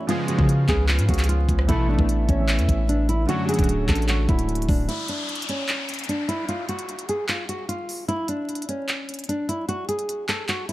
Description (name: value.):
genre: hip hop, trap.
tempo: 150 BPM.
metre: 4/4.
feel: half-time.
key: unclear.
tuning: A4 = 440 Hz.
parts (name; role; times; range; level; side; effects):
nylon-string guitar; melody; 0.0-10.7 s; C#4 to A4; -27 LUFS; equal; ping-pong delay.
dark baby grand piano; accompaniment; 0.0-4.9 s; D3 to B4; -28 LUFS; right 4 dB; none.
mellow French horn section; sustained chords; 0.0-4.9 s; A3 to E#5; -37 LUFS; equal; none.
analog synth brass; stabs; 0.1-3.7 s; F#2 to A3; -28 LUFS; left 2 dB; chorus, ping-pong delay.
trap drum kit; drums; 0.1-10.7 s; handclaps, hi-hat, kick drum, rim click; -25 LUFS; equal; overdrive.
long sustained 808-style bass; bass; 0.4-4.9 s; D1 to C#3; -22 LUFS; equal; none.
downlifter; sound effects; 4.9-8.1 s; none; -33 LUFS; left 3 dB; none.
room: little or no reverb.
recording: vinyl crackle.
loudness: -21 LUFS.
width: side -16 dB against mid.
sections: 0.0-4.9 A section; 4.9-10.7 B section.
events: break 4.9-10.7.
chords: 0.1 C#7; 1.7 Asus2; 3.3 Dmaj7; 4.9 N.C..